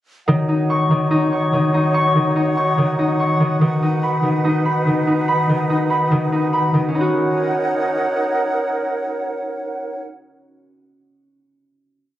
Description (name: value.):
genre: hip hop, drill.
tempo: 144 BPM.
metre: 4/4.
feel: half-time.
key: Eb minor.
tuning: A4 = 440 Hz.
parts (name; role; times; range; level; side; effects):
flute section; sustained chords; 0.3-10.0 s; D#4 to Gb5; -22 LUFS; right 2 dB; none.
concert harp; arpeggios; 0.3-10.1 s; Eb3 to Db6; -17 LUFS; left 1 dB; low-pass filter, ping-pong delay.
room: moderate recital hall reverb, RT60 1.4 s, studio reverb.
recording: recorded on a phone in the room, compression, lossy compression artefacts.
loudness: -16 LUFS.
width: side -13 dB against mid.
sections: 0.3-6.9 breakdown; 6.9-10.3 final chord.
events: none.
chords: 0.3 Ebm7; 3.6 B/D#; 6.9 Ebm7.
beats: | 0.28 0.69 1.11 1.53 | 1.95 2.36 2.78 3.19 | 3.61 4.03 4.45 4.86 | 5.28 5.70 6.11 6.53 | 6.95 7.36 7.78 8.20 | 8.61 9.03 9.45 9.86.